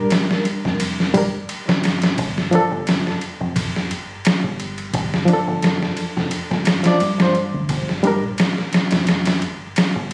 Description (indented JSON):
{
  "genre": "trip hop",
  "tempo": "87 BPM",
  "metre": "4/4",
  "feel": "swing 53% on 16ths",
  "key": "G minor",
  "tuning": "A4 = 441 Hz",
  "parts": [
    { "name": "barky reed electric piano", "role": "accompaniment", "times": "0.0-8.2 s", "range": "F3 to D5", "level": "-22 LUFS", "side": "equal", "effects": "fast tremolo, tape echo" },
    { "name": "deep dub fingered electric bass", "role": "bass", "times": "0.0-10.1 s", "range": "F1 to G2", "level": "-28 LUFS", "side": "equal", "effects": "tube saturation" },
    { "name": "trip hop sampler-style drum kit", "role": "drums", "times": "0.1-10.1 s", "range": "hi-hat, kick drum, ride cymbal, snare drum", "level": "-23 LUFS", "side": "equal", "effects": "none" }
  ],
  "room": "light reverb",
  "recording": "recorded on a phone in the room, studio reverb, vinyl crackle, compression",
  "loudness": "-20 LUFS",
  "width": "mono",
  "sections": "0.0-10.1 A section",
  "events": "none",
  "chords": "0.0 Gm; 2.2 Dm; 7.7 Gm",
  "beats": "0.11 0.80 1.49 | 2.18 2.87 3.56 4.25 | 4.93 5.62 6.31 7.00 | 7.69 8.38 9.07 9.76"
}